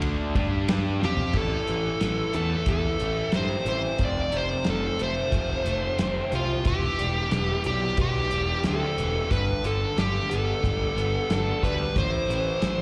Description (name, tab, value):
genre	classic rock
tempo	90 BPM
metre	4/4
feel	straight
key	A minor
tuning	A4 = 440 Hz
part	overdriven electric guitar	riff	0.0-12.8 s	F2 to G4	-34 LUFS	equal	slapback echo
part	fuzz picked electric bass	bass	0.0-12.8 s	E1 to G2	-30 LUFS	equal	overdrive
part	cloth-damped thuddy drum kit	drums	0.0-12.8 s	crash cymbal, hi-hat, kick drum, ride cymbal, snare drum, toms	-31 LUFS	equal	none
part	dark smooth lead guitar	melody	1.1-12.8 s	F4 to D5	-30 LUFS	equal	overdrive, slapback echo
room	studio ambience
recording	live gig heard through the venue's PA, recital hall reverb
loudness	-26 LUFS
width	mono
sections	0.0-1.4 A section; 1.4-12.8 B section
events	drum fill 1.0-1.4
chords	0.0 D5; 1.4 Am; 4.0 F; 6.7 C/E; 9.3 G; 12.0 Am